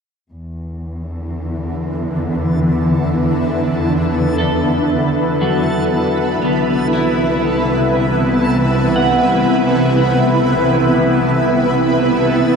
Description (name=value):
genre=ambient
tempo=59 BPM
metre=3/4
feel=straight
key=unclear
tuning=A4 = 440 Hz
part: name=shimmering ambient pad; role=sustained chords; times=1.3-12.6 s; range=C3 to B4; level=-15 LUFS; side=equal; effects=chorus, built-in reverb, phaser
part: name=warm studio cello section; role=bass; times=0.3-12.6 s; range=C2 to E2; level=-21 LUFS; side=equal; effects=tube saturation
part: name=bowed-like drone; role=drone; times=1.9-12.6 s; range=E3 to B3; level=-28 LUFS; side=right 1 dB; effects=none
part: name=backwards swelling texture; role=texture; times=2.2-12.6 s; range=A4 to A5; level=-28 LUFS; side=right 1 dB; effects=built-in reverb
part: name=clean electric guitar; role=arpeggios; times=4.4-11.9 s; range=F#3 to F#5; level=-22 LUFS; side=equal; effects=lush chorus, analog delay
room=wet huge ambient reverb, RT60 7.8 s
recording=dreamy mix soaked in reverb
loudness=-13 LUFS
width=side -6 dB against mid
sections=0.3-12.5 A section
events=fade-in on synth texture 0.3-12.5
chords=0.3 E5; 6.4 Cmaj7